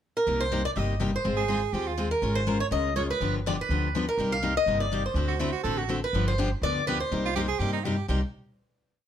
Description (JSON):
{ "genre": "acoustic string swing (jazz manouche)", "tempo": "246 BPM", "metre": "4/4", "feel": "swing 55% on 8ths", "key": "C minor", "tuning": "A4 = 440 Hz", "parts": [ { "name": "picked swing-style acoustic guitar", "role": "melody", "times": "0.2-7.8 s", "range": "Bb4 to F5", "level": "-28 LUFS", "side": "equal", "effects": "plate reverb" }, { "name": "picked steel-string acoustic guitar", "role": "accompaniment", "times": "0.3-8.2 s", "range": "C3 to Bb4", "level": "-30 LUFS", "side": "left 3 dB", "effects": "none" }, { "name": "upright bass", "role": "bass", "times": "0.3-8.2 s", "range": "G1 to G2", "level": "-30 LUFS", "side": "equal", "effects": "none" }, { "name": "bright soprano saxophone", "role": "second line", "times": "1.4-2.0, 5.3-8.2 s", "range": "Eb4 to A4", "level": "-30 LUFS", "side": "right 8 dB", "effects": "none" } ], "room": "moderate studio reverb, RT60 0.6 s", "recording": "none", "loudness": "-24 LUFS", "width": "side -10 dB against mid", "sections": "0.0-0.3 pickup bar; 0.3-8.1 A section; 8.1-9.1 final chord", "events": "none", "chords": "0.3 Cm7; 1.2 Ab6; 2.2 Db6/Ab; 3.2 G7; 4.2 Cm7; 5.2 D7; 6.1 G7; 7.1 Cm7", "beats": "0.02 | 0.26 0.51 0.75 1.00 | 1.24 1.49 1.73 1.98 | 2.22 2.47 2.71 2.96 | 3.20 3.44 3.69 3.93 | 4.18 4.42 4.67 4.91 | 5.16 5.40 5.64 5.89 | 6.13 6.38 6.62 6.87 | 7.11 7.35 7.60 7.84 | 8.09" }